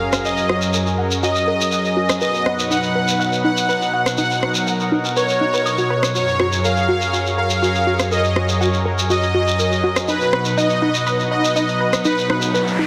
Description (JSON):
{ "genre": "progressive house", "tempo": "122 BPM", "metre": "4/4", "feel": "straight", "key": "F# major", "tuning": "A4 = 439 Hz", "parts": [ { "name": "soft supersaw", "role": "melody", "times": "0.0-12.5 s", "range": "B4 to F#5", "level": "-23 LUFS", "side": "equal", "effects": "tape echo" }, { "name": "lush unison pad", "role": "sustained chords", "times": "0.0-12.9 s", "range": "F#2 to F#5", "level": "-23 LUFS", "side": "equal", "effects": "chorus" }, { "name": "tight sequenced synth", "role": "arpeggios", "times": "0.0-12.9 s", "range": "D#4 to D#6", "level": "-25 LUFS", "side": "equal", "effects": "chorus, phaser, tape echo" }, { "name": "impact and noise sweep", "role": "sound effects", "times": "0.0-0.2, 12.4-12.9 s", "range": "none", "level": "-33 LUFS", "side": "equal", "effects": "none" }, { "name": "electronic rim click", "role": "drums", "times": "0.1-12.4 s", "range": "none", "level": "-27 LUFS", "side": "equal", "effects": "none" }, { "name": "shekere", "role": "percussion", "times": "0.1-12.8 s", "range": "none", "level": "-28 LUFS", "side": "equal", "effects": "none" } ], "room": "moderate lush hall reverb, RT60 2.8 s", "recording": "dense, heavily limited modern master", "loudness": "-18 LUFS", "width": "mono", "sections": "0.0-12.9 A section", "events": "impact 0.0; filter sweep on synth arpeggio sound 0.0-12.9; noise sweep 12.4-12.9", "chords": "0.0 F#add9; 2.2 B; 6.1 F#add9; 10.1 B" }